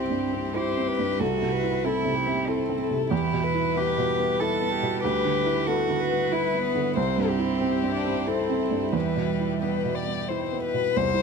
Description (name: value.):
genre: neoclassical piano and strings.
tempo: 93 BPM.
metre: 3/4.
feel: rubato.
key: E minor.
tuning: A4 = 440 Hz.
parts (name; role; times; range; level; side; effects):
dark violin; melody; 0.0-11.2 s; G4 to D5; -28 LUFS; left 10 dB; none.
rich cello; second line; 0.0-11.2 s; E2 to A4; -29 LUFS; right 4 dB; none.
felt-muted upright piano; accompaniment; 0.0-11.2 s; C2 to E4; -27 LUFS; right 5 dB; none.
warm chamber string section; sustained chords; 0.0-11.2 s; G3 to C5; -34 LUFS; left 2 dB; none.
room: light reverb.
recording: close, detailed microphones.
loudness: -23 LUFS.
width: side -5 dB against mid.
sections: 0.0-11.0 A section.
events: none.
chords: 0.0 C; 1.2 Am/C; 3.1 Em; 5.0 G6/D; 7.0 C; 8.9 Em.